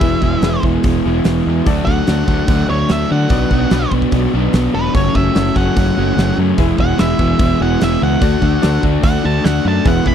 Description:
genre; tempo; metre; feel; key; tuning
classic rock; 147 BPM; 4/4; straight; unclear; A4 = 441 Hz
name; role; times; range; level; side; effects
octave-fuzz lead guitar; melody; 0.0-10.1 s; B4 to B5; -22 LUFS; right 2 dB; distortion, slapback echo
bright concert grand piano; accompaniment; 0.0-10.1 s; E4 to E5; -27 LUFS; left 13 dB; none
overdriven semi-hollow guitar; riff; 0.0-10.1 s; F#2 to F#4; -19 LUFS; left 14 dB; none
overdriven semi-hollow guitar; riff; 0.0-10.1 s; E2 to D4; -19 LUFS; right 14 dB; none
growling fingered electric bass; bass; 0.0-10.1 s; E1 to D3; -18 LUFS; equal; overdrive
huge arena drum kit; drums; 0.0-10.1 s; hi-hat, kick drum, snare drum; -17 LUFS; right 1 dB; none
room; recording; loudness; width
little or no reverb; dry, close 1970s-style studio recording; -12 LUFS; side -8 dB against mid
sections
0.0-10.1 A section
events
lead electric guitar solo 0.0-10.1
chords
0.0 E; 1.7 D; 3.3 Bm; 4.9 F#m; 6.6 E; 8.2 D

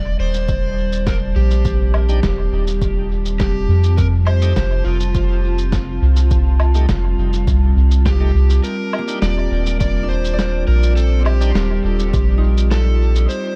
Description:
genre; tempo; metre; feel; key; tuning
ambient dub; 103 BPM; 4/4; straight; unclear; A4 = 443 Hz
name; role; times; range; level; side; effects
overdriven slide guitar; melody; 0.0-13.6 s; F4 to D5; -28 LUFS; equal; tape echo
warbly tape-like pad; sustained chords; 0.0-13.6 s; G3 to A5; -28 LUFS; equal; chorus, built-in reverb
soft dub sub bass; bass; 0.0-13.3 s; Eb1 to F2; -18 LUFS; equal; none
electronic shaker, snare drum and woodblock; drums; 0.3-13.4 s; none; -28 LUFS; equal; dub echo
electronic kick drum; drums; 0.5-12.3 s; none; -25 LUFS; equal; overdrive
bright tonewheel organ; stabs; 2.1-11.5 s; A3 to G4; -38 LUFS; equal; none
concert harp; arpeggios; 9.0-13.6 s; Bb3 to D5; -33 LUFS; equal; tape echo
room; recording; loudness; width
little or no reverb; none; -17 LUFS; mono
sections
0.0-8.6 A section; 8.6-13.6 B section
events
none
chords
0.0 Eb; 4.0 F9; 8.6 Ebmaj7

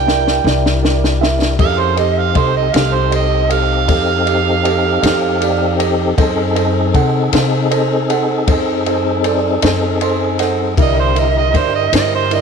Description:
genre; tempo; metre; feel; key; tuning
slow blues; 52 BPM (dotted quarters); 12/8; straight; unclear; A4 = 442 Hz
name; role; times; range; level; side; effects
overdriven harmonica; second line; 0.0-12.4 s; C5 to G5; -17 LUFS; right 9 dB; slapback echo
mellow tonewheel organ; sustained chords; 0.0-12.4 s; D3 to Bb4; -19 LUFS; left 2 dB; chorus vibrato, fast rotary speaker
upright bass; bass; 0.0-12.4 s; C2 to C3; -18 LUFS; left 3 dB; none
dark concert grand piano; accompaniment; 0.1-12.4 s; E4 to C6; -19 LUFS; right 10 dB; none
compact cocktail drum kit; drums; 0.1-12.4 s; kick drum, ride cymbal, snare drum; -19 LUFS; left 3 dB; none
room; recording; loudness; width
light reverb, small room ambience; 1960s-style stereo; -12 LUFS; side -6 dB against mid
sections
0.0-12.4 A section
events
drum fill 0.0-1.6; harmonica solo 0.0-12.4; grand piano fill 9.6-10.8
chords
0.0 C9; 1.6 F9; 6.2 F#dim7; 10.8 C9

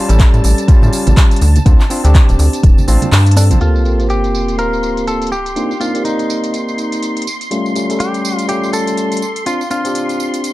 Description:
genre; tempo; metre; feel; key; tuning
deep house; 123 BPM; 4/4; swing 58% on 16ths; G minor; A4 = 441 Hz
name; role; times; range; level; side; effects
overdriven tine electric piano; stabs; 0.0-10.5 s; G3 to D5; -18 LUFS; equal; sidechain pumping, low-pass filter, tape echo
soft string machine; texture; 0.0-10.5 s; A5 to C6; -27 LUFS; left 1 dB; ensemble chorus, sidechain pumping
rubbery square bass; bass; 0.1-3.6 s; D1 to A2; -10 LUFS; equal; sidechain pumping
deep house drum kit; drums; 0.1-10.5 s; handclaps, hi-hat, tambourine; -23 LUFS; right 1 dB; low-pass filter on perc, small room ambience, low-pass filter on hats, low-pass filter on snare
electronic kick drum; drums; 0.2-2.7 s; none; -8 LUFS; equal; small room ambience
congas; percussion; 0.8-3.6 s; none; -21 LUFS; right 3 dB; none
direct-recorded clean electric guitar; melody; 3.4-10.4 s; D4 to Bb4; -21 LUFS; equal; vintage 12-bit sampler grit, dub echo
sub drop; sound effects; 3.6-5.6 s; none; -18 LUFS; equal; none
room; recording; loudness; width
little or no reverb; dark, warm production; -11 LUFS; side -17 dB against mid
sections
0.0-3.6 A section; 3.6-10.5 B section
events
kick drops out 3.1-3.6; impact 3.6-5.6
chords
0.0 Aaug7; 1.4 Dm7; 3.6 Gm11; 5.3 Cm11; 7.3 A7alt; 9.2 Dm7

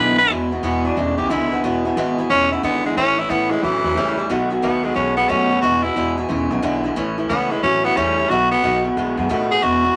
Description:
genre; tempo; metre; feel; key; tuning
rockabilly; 180 BPM; 4/4; swing 64% on 8ths; E major; A4 = 440 Hz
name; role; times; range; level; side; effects
raspy tenor saxophone; melody; 0.0-10.0 s; E3 to B4; -21 LUFS; equal; none
picked swing-style acoustic guitar; accompaniment; 0.0-10.0 s; E2 to F#4; -26 LUFS; equal; none
electric guitar through a small old amp; riff; 0.0-10.0 s; E2 to A3; -24 LUFS; equal; none
upright bass; bass; 0.0-9.9 s; E1 to A2; -32 LUFS; equal; none
room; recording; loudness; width
moderate studio reverb, RT60 0.5 s; none; -19 LUFS; mono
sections
0.3-10.0 A section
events
none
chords
0.3 E; 3.0 A; 4.3 B7; 5.6 E; 7.0 A; 8.3 B7

